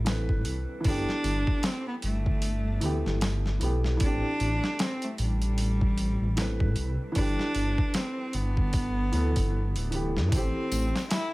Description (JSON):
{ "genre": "trip hop", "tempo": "76 BPM", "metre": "4/4", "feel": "swing 58% on 16ths", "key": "unclear", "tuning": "A4 = 440 Hz", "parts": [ { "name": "warm cello", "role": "melody", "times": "0.0-11.3 s", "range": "G3 to E4", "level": "-32 LUFS", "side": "equal", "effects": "tape echo" }, { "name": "felt-muted upright piano", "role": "accompaniment", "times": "0.0-11.3 s", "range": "E3 to B4", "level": "-35 LUFS", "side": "equal", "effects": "tremolo" }, { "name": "dark detuned saw bass", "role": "bass", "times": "0.0-10.9 s", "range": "D1 to A2", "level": "-28 LUFS", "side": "equal", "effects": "none" }, { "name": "boom bap sampler-style drum kit", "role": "drums", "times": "0.1-11.3 s", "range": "hi-hat, kick drum, snare drum", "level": "-29 LUFS", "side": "equal", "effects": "overdrive" }, { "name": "tambourine", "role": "percussion", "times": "10.3-11.3 s", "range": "none", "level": "-42 LUFS", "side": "left 5 dB", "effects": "none" } ], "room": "studio reverb", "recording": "none", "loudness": "-25 LUFS", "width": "side -20 dB against mid", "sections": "0.0-11.3 A section", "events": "none", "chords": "0.0 Am7; 0.8 G69; 4.0 Am7; 7.2 G69; 10.3 Am7", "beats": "0.06 | 0.85 1.64 2.43 3.22 | 4.01 4.80 5.59 6.38 | 7.17 7.96 8.74 9.54 | 10.32 11.11" }